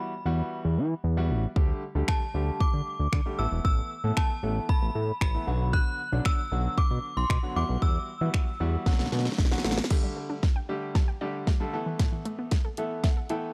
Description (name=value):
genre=dance-pop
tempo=115 BPM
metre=4/4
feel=straight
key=unclear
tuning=A4 = 437 Hz
part: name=synth chime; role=melody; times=0.0-8.8 s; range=A5 to F#6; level=-36 LUFS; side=equal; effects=ensemble chorus, tape echo
part: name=clear concert grand piano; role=accompaniment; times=0.0-13.5 s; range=D3 to G5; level=-37 LUFS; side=equal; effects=sidechain pumping
part: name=fat analog bass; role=bass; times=0.3-9.8 s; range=E1 to E3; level=-30 LUFS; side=equal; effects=sidechain pumping
part: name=pop drum kit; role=drums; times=1.6-13.4 s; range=crash cymbal, finger snaps, hi-hat, kick drum, snare drum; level=-28 LUFS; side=equal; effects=none
part: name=unison pluck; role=arpeggios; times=9.9-13.4 s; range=A2 to A5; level=-40 LUFS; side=equal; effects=sidechain pumping, tape echo
room=little or no reverb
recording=dry, gritty hardware recording, cassette tape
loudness=-28 LUFS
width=mono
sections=0.0-9.9 A section; 9.9-13.5 B section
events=drum fill 8.9-9.9, 9.9-13.5; build-up 9.9-13.5; grand piano fill 12.5-13.5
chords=0.0 Emadd9; 1.6 Dsus4; 3.4 Asus2; 5.5 Bm; 7.6 Emadd9; 8.9 Bm; 9.9 Dsus4; 11.7 Asus2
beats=0.00 0.52 1.04 | 1.56 2.08 2.60 3.13 | 3.65 4.17 4.69 5.21 | 5.73 6.26 6.78 7.30 | 7.82 8.34 8.87 9.39 | 9.91 10.43 10.95 11.47 | 11.99 12.52 13.04